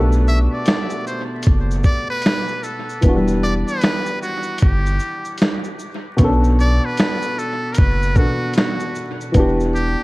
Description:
lo-fi hip hop; 76 BPM; 4/4; swing 62% on 16ths; A4 = 438 Hz
dark upright piano; accompaniment; 0.0-10.0 s; B2 to A4; -22 LUFS; equal; cassette tape
soft dub sub bass; bass; 0.0-10.0 s; E1 to B1; -18 LUFS; equal
dusty soul sampler-style drum kit; drums; 0.1-10.0 s; finger snaps, hi-hat, kick drum, shaker, snare drum; -18 LUFS; equal
trumpet with metal mute; melody; 0.3-10.0 s; F#4 to E5; -25 LUFS; equal; dub echo
light reverb, digital ambience; echo-heavy mix, vinyl crackle; -16 LUFS; side -21 dB against mid
0.0-6.2 A section; 6.2-10.0 A section
0.0 Bm7; 3.0 Em7; 6.2 Bm7; 9.3 Em7
0.66 1.45 2.24 | 3.03 3.82 4.61 5.40 | 6.19 6.98 7.77 8.56 | 9.35

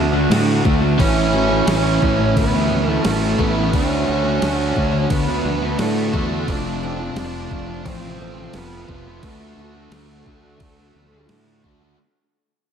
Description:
rock, shoegaze and dream pop; 87 BPM; 4/4; straight; A4 = 436 Hz
picked twelve-string acoustic guitar; arpeggios; 0.0-12.0 s; E3 to F#4; -28 LUFS; left 5 dB; lush chorus, tape echo
overdriven electric guitar; riff; 0.0-12.0 s; A2 to F#4; -24 LUFS; right 10 dB; reverse reverb
fuzz fingered electric bass; bass; 0.0-11.9 s; F1 to A2; -23 LUFS; equal; overdrive
thick fuzz guitar; riff; 0.1-12.0 s; F2 to D4; -25 LUFS; left 9 dB; distortion, lush chorus
detuned 8-bit digital drum machine; drums; 0.3-11.8 s; crash cymbal, kick drum, snare drum; -24 LUFS; equal
octave-fuzz lead guitar; melody; 1.0-11.3 s; A3 to D4; -25 LUFS; right 4 dB; distortion, tape echo
biting overdriven guitar; riff; 1.0-12.0 s; A2 to F#4; -27 LUFS; equal
moderate plate reverb, RT60 1.9 s; dreamy mix soaked in reverb; -16 LUFS; side -8 dB against mid
0.0-12.0 A section
fade-out 0.0-12.0
0.0 D; 1.0 A6; 3.7 Dmaj7; 6.5 F; 9.2 D
0.31 | 0.99 1.68 2.36 3.05 | 3.73 4.42 5.11 5.79 | 6.48 7.17 7.86 8.54 | 9.23 9.92 10.61 11.30

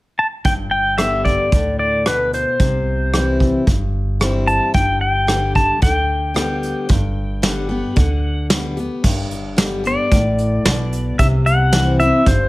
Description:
honky-tonk and classic country; 112 BPM; 4/4; straight; G major; A4 = 440 Hz
pedal steel guitar; melody; 0.2-12.5 s; B4 to A5; -19 LUFS; left 1 dB
picked steel-string acoustic guitar; accompaniment; 0.4-12.5 s; G2 to G4; -21 LUFS; left 2 dB
vintage brush drum kit; drums; 0.4-12.4 s; crash cymbal, hi-hat, kick drum, rim click, snare drum; -19 LUFS; equal
upright bass; bass; 0.5-12.5 s; G1 to D2; -21 LUFS; right 1 dB
light reverb; -15 LUFS; side -19 dB against mid
0.4-9.0 A section; 9.0-12.5 B section
0.4 G; 2.6 C; 4.7 G; 11.2 C
| 0.45 0.98 1.52 2.06 | 2.60 3.13 3.67 4.21 | 4.74 5.28 5.82 6.36 | 6.89 7.43 7.97 8.50 | 9.04 9.58 10.11 10.65 | 11.19 11.72 12.26

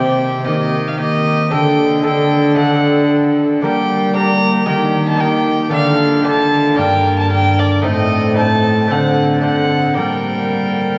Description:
classical, renaissance-style consort dance; 114 BPM; 4/4; straight; G minor; A4 = 437 Hz
warm violin; melody; 0.0-11.0 s; D5 to Bb5; -21 LUFS; equal
warm viola; second line; 0.0-11.0 s; G4 to Bb4; -24 LUFS; equal
lute; accompaniment; 0.0-11.0 s; G2 to D5; -23 LUFS; equal
mellow trombone; accompaniment; 0.0-11.0 s; Bb3 to D4; -23 LUFS; equal
dark cello; bass; 0.0-11.0 s; G2 to G3; -20 LUFS; equal
wet cathedral reverb, RT60 7.4 s; recorded in a church or concert hall, vinyl crackle, nothing above 7.8 kHz; -15 LUFS; mono
0.0-11.0 A section
0.5 Eb; 1.5 Dsus4; 3.6 Gm; 4.7 Eb; 5.7 Dm; 6.8 Gm; 7.8 Adim; 8.9 D7; 10.0 Gm
0.47 1.00 | 1.52 2.05 2.58 3.10 | 3.63 4.16 4.68 5.21 | 5.73 6.26 6.79 7.32 | 7.84 8.37 8.90 9.44 | 9.97 10.51

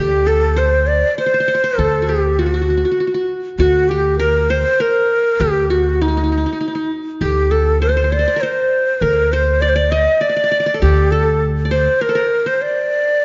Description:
Arabic maqam ensemble; 100 BPM; 3/4; straight; D maqam hijaz; A4 = 440 Hz
breathy ney; melody; 0.0-13.2 s; Eb4+26c to Eb5+24c; -18 LUFS; equal
qanun; second line; 0.0-13.2 s; Eb4+25c to Eb5+25c; -25 LUFS; equal
upright bass; bass; 0.0-11.9 s; D2; -20 LUFS; equal
moderate concert hall reverb, RT60 1.9 s; nothing above 7.6 kHz; -16 LUFS; mono
0.0-13.2 A section
0.58 1.18 | 1.78 2.39 2.99 | 3.59 4.19 4.80 | 5.40 6.00 6.60 | 7.21 7.81 8.41 | 9.01 9.62 10.22 | 10.82 11.42 12.03 | 12.63 13.23

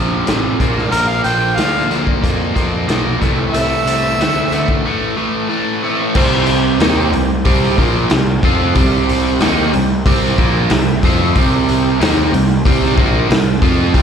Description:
blues rock power trio and southern rock; 92 BPM; 4/4; straight; C mixolydian; A4 = 440 Hz
biting overdriven guitar; riff; 0.0-14.0 s; F2 to F4; -16 LUFS; right 1 dB; slapback echo
fuzz picked electric bass; bass; 0.0-14.0 s; A1 to F2; -19 LUFS; equal; overdrive
raw garage drum kit; drums; 0.3-14.0 s; crash cymbal, hi-hat, kick drum, snare drum; -17 LUFS; equal
overdriven tonewheel organ; sustained chords; 0.6-14.0 s; C4 to A5; -26 LUFS; right 3 dB; slow rotary speaker, chorus vibrato
bright harmonica; melody; 0.9-4.8 s; Bb4 to G5; -17 LUFS; right 1 dB; overdrive, slapback echo
studio ambience; live gig heard through the venue's PA, recital hall reverb; -12 LUFS; side -7 dB against mid
0.0-6.2 A section; 6.2-14.0 B section
break 4.9-6.2; tonewheel organ fill 10.1-11.4
0.0 F; 0.6 Bb; 3.2 Am/C; 6.2 C
0.27 | 0.93 1.58 2.24 2.89 | 3.55 4.20 4.85 5.51 | 6.16 6.81 7.46 8.11 | 8.76 9.41 10.06 10.70 | 11.35 12.00 12.65 13.29 | 13.94

